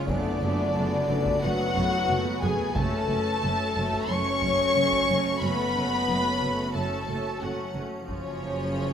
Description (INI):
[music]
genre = cinematic, suspense film score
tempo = 90 BPM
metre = 4/4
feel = straight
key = F# harmonic minor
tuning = A4 = 438 Hz
[part]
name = dark studio violin section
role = melody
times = 0.0-8.9 s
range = C#5 to C#6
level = -29 LUFS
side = left 3 dB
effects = none
[part]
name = dark studio violin section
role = second line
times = 0.0-8.9 s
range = C#4 to C#5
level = -30 LUFS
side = left 2 dB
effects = none
[part]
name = warm studio viola section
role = accompaniment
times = 0.0-8.9 s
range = E#3 to C#4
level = -34 LUFS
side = right 2 dB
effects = none
[part]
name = clear French horn section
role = sustained chords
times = 0.0-8.9 s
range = C#3 to G#4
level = -31 LUFS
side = left 2 dB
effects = none
[part]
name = icy glass pad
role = sustained chords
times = 0.0-8.9 s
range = E#4 to B5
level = -38 LUFS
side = right 2 dB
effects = chorus, built-in reverb
[part]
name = bowed-like drone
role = drone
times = 0.0-8.9 s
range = F#1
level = -36 LUFS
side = equal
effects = built-in reverb, phaser
[part]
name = vibraphone with medium hard mallets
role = texture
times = 0.0-8.1 s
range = B4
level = -42 LUFS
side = right 1 dB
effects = none
[part]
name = warm studio cello section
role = riff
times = 0.1-8.9 s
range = F#2 to F#3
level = -37 LUFS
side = right 1 dB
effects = none
[part]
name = warm chamber double bass section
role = bass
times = 0.1-8.9 s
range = F#1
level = -35 LUFS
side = right 3 dB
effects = none
[part]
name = warm studio cello section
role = bass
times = 0.1-8.9 s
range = F#2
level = -36 LUFS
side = right 3 dB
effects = none
[part]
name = taiko ensemble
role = drums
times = 0.1-8.9 s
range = none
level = -36 LUFS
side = right 1 dB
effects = none
[sound]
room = wet scoring stage reverb, RT60 1.4 s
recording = none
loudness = -23 LUFS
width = side -8 dB against mid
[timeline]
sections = 0.0-8.9 A section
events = drum fill 2.1-2.8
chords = 0.1 Bm7/F#; 2.8 F#m; 8.1 C#/F#